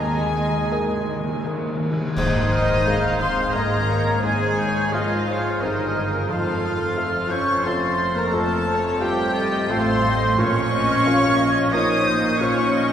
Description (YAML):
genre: cinematic, emotional film score for orchestra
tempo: 88 BPM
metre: 3/4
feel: rubato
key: Ab major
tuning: A4 = 440 Hz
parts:
  - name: warm studio violin section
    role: melody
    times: 0.0-12.9 s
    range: A4 to Ab5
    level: -29 LUFS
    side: left 2 dB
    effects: none
  - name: concert flute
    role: second line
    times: 0.0-12.9 s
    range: Eb5 to A6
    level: -29 LUFS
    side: left 1 dB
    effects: none
  - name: warm oboe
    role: second line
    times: 0.0-12.9 s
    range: Eb4 to Eb5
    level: -28 LUFS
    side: right 1 dB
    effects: none
  - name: warm studio violin section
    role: second line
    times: 0.0-12.9 s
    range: Ab4 to Eb6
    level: -26 LUFS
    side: equal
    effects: none
  - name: felt-muted upright piano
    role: accompaniment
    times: 0.0-12.9 s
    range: Eb2 to Eb5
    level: -28 LUFS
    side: equal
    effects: none
  - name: rich studio viola section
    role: accompaniment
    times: 0.0-12.9 s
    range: Eb3 to Eb5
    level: -28 LUFS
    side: right 1 dB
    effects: none
  - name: mellow French horn section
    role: sustained chords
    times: 0.0-12.9 s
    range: Eb3 to Eb4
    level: -29 LUFS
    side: left 2 dB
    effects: none
  - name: dark studio double bass section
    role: bass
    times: 0.0-12.9 s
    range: F1 to Eb2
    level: -30 LUFS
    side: right 2 dB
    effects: none
  - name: warm studio cello section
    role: bass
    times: 0.0-12.9 s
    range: F2 to Eb3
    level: -28 LUFS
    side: equal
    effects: none
  - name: timpani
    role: percussion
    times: 0.0-2.1 s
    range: Eb3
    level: -29 LUFS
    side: left 1 dB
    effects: none
  - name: clear clarinet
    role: second line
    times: 2.2-12.9 s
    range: Ab4 to Db5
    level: -31 LUFS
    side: equal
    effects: none
  - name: clash cymbals and concert bass drum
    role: percussion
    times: 2.2-3.5 s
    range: none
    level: -32 LUFS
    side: equal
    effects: none
room: wet cathedral reverb, RT60 5.1 s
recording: heard from further back in the room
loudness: -18 LUFS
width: side -9 dB against mid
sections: 0.0-2.2 A section; 2.2-12.9 B section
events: timpani fill 0.0-2.2; band accent 2.2-2.9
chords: 0.0 Ebsus4; 2.2 Ab; 6.3 F; 10.4 Bbm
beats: 0.72 1.45 | 2.17 2.87 3.55 | 4.24 4.93 5.61 | 6.29 6.96 7.64 | 8.32 8.99 9.69 | 10.37 11.04 11.71 | 12.39